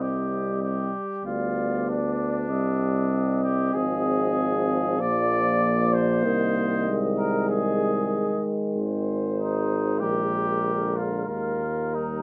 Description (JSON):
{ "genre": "classical, brass quintet", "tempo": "96 BPM", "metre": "4/4", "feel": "straight", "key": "unclear", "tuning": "A4 = 440 Hz", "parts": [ { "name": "mellow cornet", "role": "melody", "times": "0.0-12.2 s", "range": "Bb4 to Eb5", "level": "-34 LUFS", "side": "equal", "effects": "none" }, { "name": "mellow trumpet", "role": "second line", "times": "0.0-12.2 s", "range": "D4 to D5", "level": "-31 LUFS", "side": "equal", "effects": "none" }, { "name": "clear euphonium", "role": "accompaniment", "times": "0.0-12.2 s", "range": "D3 to G3", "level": "-33 LUFS", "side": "equal", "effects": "none" }, { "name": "dark French horn", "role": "accompaniment", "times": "0.0-12.2 s", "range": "G3 to C4", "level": "-32 LUFS", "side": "equal", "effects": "none" }, { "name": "clear tuba", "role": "bass", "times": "0.0-12.2 s", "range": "Ab1 to Eb2", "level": "-30 LUFS", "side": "equal", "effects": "none" } ], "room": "light reverb", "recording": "none", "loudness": "-25 LUFS", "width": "mono", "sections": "0.0-12.2 A section", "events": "none", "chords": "0.0 Cm; 1.2 G7/D; 2.5 Cm; 3.7 Fm7/Ab; 5.0 Bb; 6.3 Ab/C; 8.8 Ab; 10.0 Bb7; 11.3 Eb" }